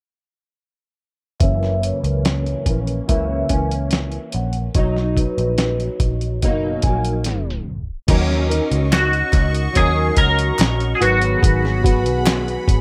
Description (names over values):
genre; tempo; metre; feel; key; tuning
indie pop, bedroom pop; 72 BPM; 4/4; straight; unclear; A4 = 440 Hz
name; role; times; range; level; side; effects
vibraphone with soft mallets; second line; 1.4-7.9 s; B4 to G#5; -30 LUFS; equal; analog chorus, analog delay
fingerpicked plugged-in steel-string acoustic guitar; accompaniment; 1.4-12.8 s; F#2 to A#4; -25 LUFS; equal; ensemble chorus, warbly pitch drift, low-pass filter
vintage muted picked electric bass; bass; 1.4-12.8 s; F#1 to D#2; -23 LUFS; equal; none
dusty soul sampler-style drum kit; drums; 1.4-12.8 s; crash cymbal, hi-hat, kick drum, snare drum; -22 LUFS; equal; none
phased analog pad; sustained chords; 8.4-12.8 s; F#4 to C#6; -30 LUFS; equal; phaser, chorus
twangy electric guitar; melody; 8.9-12.6 s; F#4 to A#4; -22 LUFS; equal; analog chorus
group handclap; percussion; 8.9-12.5 s; none; -32 LUFS; equal; none
room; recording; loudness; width
light reverb; tape stop; -19 LUFS; mono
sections
1.4-8.1 A section; 8.1-12.8 B section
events
filter sweep on steel-string acoustic guitar 1.4-8.1; drum fill 7.3-8.1; tape stop 7.3-8.1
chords
1.4 F#7; 4.7 Bmaj7; 8.1 D#m7; 11.0 G#m7